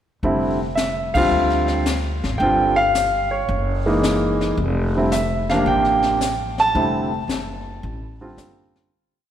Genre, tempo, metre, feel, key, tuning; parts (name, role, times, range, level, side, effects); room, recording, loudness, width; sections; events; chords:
jazz piano trio; 110 BPM; 4/4; swing 69% on 8ths; F major; A4 = 440 Hz
warm baby grand piano; melody; 0.2-8.9 s; C3 to A5; -19 LUFS; right 1 dB
upright bass; bass; 0.2-8.9 s; F1 to D2; -25 LUFS; equal
jazz brush drum kit; drums; 0.2-9.3 s; brushed snare drum, hi-hat, kick drum, ride cymbal, snare drum; -28 LUFS; left 3 dB
moderate church reverb, RT60 3.5 s; recorded in a church or concert hall; -17 LUFS; side -10 dB against mid
0.2-8.9 A section
band accent 1.0; fade-out 6.8-8.9
0.2 F5; 1.3 Dm7; 2.4 G5; 3.5 Gb13; 4.6 F